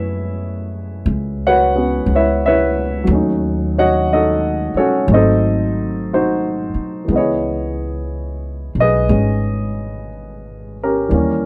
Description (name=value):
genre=jazz ballad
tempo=60 BPM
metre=4/4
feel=swing 66% on 8ths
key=C# minor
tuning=A4 = 439 Hz
part: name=dark grand piano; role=accompaniment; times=0.0-11.5 s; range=E3 to F#5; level=-19 LUFS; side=equal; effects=none
part: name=upright bass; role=bass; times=0.0-11.5 s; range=G#1 to F#2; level=-23 LUFS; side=equal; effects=none
room=little or no reverb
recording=dry, close 1970s-style studio recording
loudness=-17 LUFS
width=mono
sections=0.0-7.1 A section; 7.1-11.5 B section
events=none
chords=0.0 F#m11; 3.1 D#m7b5; 5.1 G#7b9; 7.1 C#m9